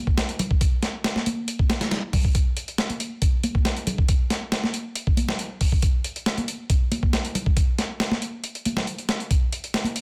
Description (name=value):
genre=breakbeat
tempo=138 BPM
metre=4/4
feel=straight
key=none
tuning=none
part: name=breakbeat sampler-style drum kit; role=drums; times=0.1-10.0 s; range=hi-hat, kick drum, snare drum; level=-24 LUFS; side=equal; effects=studio reverb
part: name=congas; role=percussion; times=0.4-9.9 s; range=none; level=-32 LUFS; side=equal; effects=none
room=moderate small room reverb, RT60 0.5 s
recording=dense, heavily limited modern master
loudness=-24 LUFS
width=mono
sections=0.0-10.0 A section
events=none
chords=none